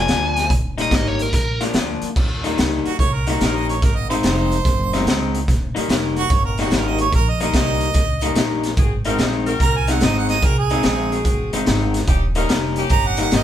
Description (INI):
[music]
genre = electric blues shuffle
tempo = 145 BPM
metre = 4/4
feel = swing 66% on 8ths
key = Eb mixolydian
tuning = A4 = 439 Hz
[part]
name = biting lead guitar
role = melody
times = 0.0-1.6 s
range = Bb4 to Ab5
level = -22 LUFS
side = left 1 dB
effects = overdrive
[part]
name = electric guitar through a small old amp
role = riff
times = 0.0-13.4 s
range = Eb3 to F4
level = -22 LUFS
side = left 3 dB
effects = none
[part]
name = upright bass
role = bass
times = 0.0-13.4 s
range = Eb1 to Eb2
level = -23 LUFS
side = equal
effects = none
[part]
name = raw garage drum kit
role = drums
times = 0.1-13.4 s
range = crash cymbal, hi-hat, kick drum, snare drum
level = -20 LUFS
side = equal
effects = none
[part]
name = clear harmonica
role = second line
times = 2.9-13.4 s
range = Gb4 to Bb5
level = -23 LUFS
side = right 6 dB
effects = none
[part]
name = bright saxophone section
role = stabs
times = 8.8-13.2 s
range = C4 to Bb4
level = -26 LUFS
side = left 1 dB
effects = none
[sound]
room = light reverb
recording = band playing live in one room, faint mains hum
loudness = -16 LUFS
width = side -11 dB against mid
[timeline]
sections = 0.0-2.2 A section; 2.2-13.4 A section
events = lead electric guitar solo 0.0-2.2; harmonica solo 2.2-13.4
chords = 0.0 Bb7; 0.5 Eb; 1.3 Bb; 2.2 Eb7; 3.8 Ab7; 5.5 Eb7; 8.8 Ab7; 12.1 Eb7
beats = 0.10 | 0.51 0.93 1.34 1.75 | 2.17 2.58 3.00 3.41 | 3.82 4.24 4.65 5.06 | 5.48 5.89 6.30 6.72 | 7.13 7.54 7.96 8.37 | 8.78 9.20 9.61 10.02 | 10.43 10.85 11.26 11.67 | 12.09 12.50 12.91 13.32